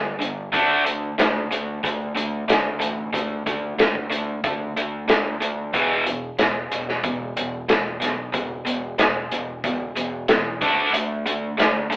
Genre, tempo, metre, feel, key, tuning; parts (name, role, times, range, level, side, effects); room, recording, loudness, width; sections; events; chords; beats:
classic rock; 92 BPM; 4/4; straight; A4 = 440 Hz
sludgy distorted guitar; riff; 0.0-12.0 s; E2 to D4; -24 LUFS; equal; overdrive
growling fingered electric bass; bass; 0.0-12.0 s; E1 to E2; -32 LUFS; equal; overdrive
vintage drum kit; drums; 0.2-12.0 s; hi-hat, kick drum, snare drum; -22 LUFS; equal
moderate studio reverb, RT60 0.6 s; band playing live in one room, telephone sound; -20 LUFS; side -24 dB against mid
0.0-12.0 A section
0.0 G5; 0.5 D5; 5.7 E5; 10.6 D5
| 0.53 1.18 1.83 2.48 | 3.14 3.79 4.44 5.09 | 5.74 6.39 7.04 7.69 | 8.34 8.99 9.64 10.29 | 10.94 11.59